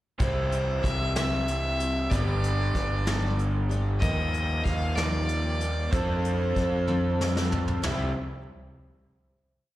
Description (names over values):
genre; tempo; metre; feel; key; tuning
folk rock and heartland rock; 63 BPM (dotted quarters); 6/8; straight; unclear; A4 = 445 Hz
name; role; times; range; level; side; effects
clear fiddle; melody; 0.2-7.2 s; C5 to F5; -32 LUFS; right 1 dB; slapback echo, analog delay
picked twelve-string acoustic guitar; accompaniment; 0.2-8.1 s; G2 to A4; -33 LUFS; left 3 dB; none
raw garage guitar; riff; 0.2-8.1 s; G2 to A4; -33 LUFS; right 2 dB; overdrive, slapback echo
fingered electric bass; bass; 0.2-8.1 s; G1 to F2; -28 LUFS; equal; none
soft brush drum kit; drums; 0.2-8.0 s; hi-hat, kick drum, ride cymbal, snare drum, toms; -30 LUFS; equal; none
room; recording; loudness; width
light reverb; live gig heard through the venue's PA, recital hall reverb; -24 LUFS; side -15 dB against mid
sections
0.2-7.8 verse; 7.8-9.7 final chord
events
drum fill 6.9-7.8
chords
0.2 C; 2.1 G; 4.0 Ebadd9; 5.9 F6; 7.8 C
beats
| 0.20 1.16 | 2.11 3.07 | 4.02 4.97 | 5.93 6.88 | 7.83